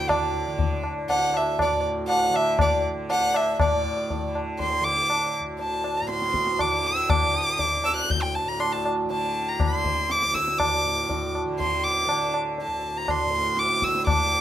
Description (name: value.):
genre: indian classical, Hindustani.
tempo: 120 BPM.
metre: 7/4.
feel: straight.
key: unclear.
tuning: A4 = 438 Hz.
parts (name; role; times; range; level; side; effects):
warm violin; melody; 0.0-14.4 s; D5 to G6; -24 LUFS; right 1 dB; none.
tanpura; drone; 0.0-14.4 s; D2 to D3; -31 LUFS; right 3 dB; none.
tabla; percussion; 0.1-14.3 s; none; -26 LUFS; left 2 dB; none.
room: light reverb.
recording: close, detailed microphones.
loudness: -22 LUFS.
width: side -11 dB against mid.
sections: 0.0-3.6 A section; 3.6-14.4 B section.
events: none.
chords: none.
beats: | 0.08 0.58 1.08 1.59 2.09 2.59 3.10 | 3.60 4.10 4.60 5.10 5.60 6.11 6.61 | 7.11 7.61 8.11 8.60 9.10 9.60 10.10 | 10.60 11.10 11.59 12.09 12.59 13.08 13.58 | 14.07.